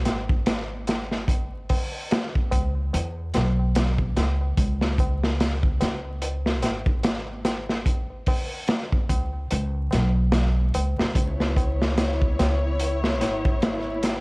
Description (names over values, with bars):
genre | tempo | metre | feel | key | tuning
trip hop | 73 BPM | 4/4 | swing 58% on 16ths | C# minor | A4 = 440 Hz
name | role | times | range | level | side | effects
upright bass | bass | 0.0-14.2 s | G#1 to E2 | -25 LUFS | equal | none
crunchy breakbeat drum kit | drums | 0.1-14.2 s | hi-hat, kick drum, snare drum | -24 LUFS | equal | none
tabla | percussion | 0.1-14.2 s | none | -35 LUFS | equal | none
rich chamber string section | sustained chords | 11.2-14.2 s | B3 to C#5 | -28 LUFS | left 1 dB | none
room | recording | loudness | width
small room ambience | worn, warbling old tape, cassette tape, vinyl crackle, warbly pitch drift | -22 LUFS | side -28 dB against mid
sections
0.0-14.2 A section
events
none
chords
0.0 C#7(no3); 4.6 N.C.; 11.2 C#m7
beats
0.47 | 1.29 2.12 2.94 3.76 | 4.58 5.40 6.22 7.05 | 7.87 8.69 9.51 10.33 | 11.16 11.98 12.80 13.62